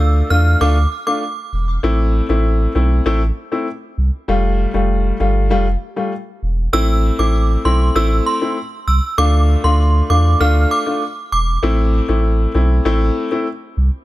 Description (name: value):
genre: dancehall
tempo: 98 BPM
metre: 4/4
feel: straight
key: A minor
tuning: A4 = 441 Hz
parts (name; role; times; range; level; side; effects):
- clear grand piano; accompaniment; 0.0-13.5 s; G3 to F4; -19 LUFS; left 3 dB; none
- warm sub bass; bass; 0.0-13.9 s; E1 to E2; -15 LUFS; equal; none
- synth chime; melody; 0.3-1.2, 6.7-11.4 s; C6 to F6; -21 LUFS; right 2 dB; ensemble chorus, tape echo
room: studio reverb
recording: none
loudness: -14 LUFS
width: side -16 dB against mid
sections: 0.0-6.7 A section; 6.7-14.0 B section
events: none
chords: 0.0 Dm; 1.8 Am; 4.3 Fadd9; 6.7 Am; 9.2 Dm; 11.6 Am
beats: 0.00 0.61 1.22 | 1.83 2.45 3.06 3.67 | 4.28 4.90 5.51 6.12 | 6.73 7.34 7.96 8.57 | 9.18 9.79 10.41 11.02 | 11.63 12.24 12.86 13.47